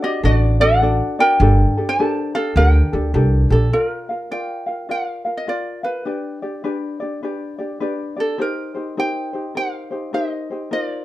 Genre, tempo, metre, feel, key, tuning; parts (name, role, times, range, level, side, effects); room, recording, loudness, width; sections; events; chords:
Hawaiian; 103 BPM; 4/4; swing 63% on 8ths; G minor, Bb major from 3.7 s; A4 = 442 Hz
ukulele; melody; 0.0-11.0 s; F#4 to A5; -21 LUFS; right 1 dB
ukulele; accompaniment; 0.0-11.0 s; D4 to F5; -23 LUFS; left 2 dB
upright bass; bass; 0.2-3.7 s; G1 to D2; -15 LUFS; equal
light reverb; dark, warm production; -17 LUFS; side -15 dB against mid
0.0-3.7 A section; 3.7-11.0 B section
0.0 D; 1.4 Gmadd9; 3.7 Bb; 6.1 G; 8.4 Cm7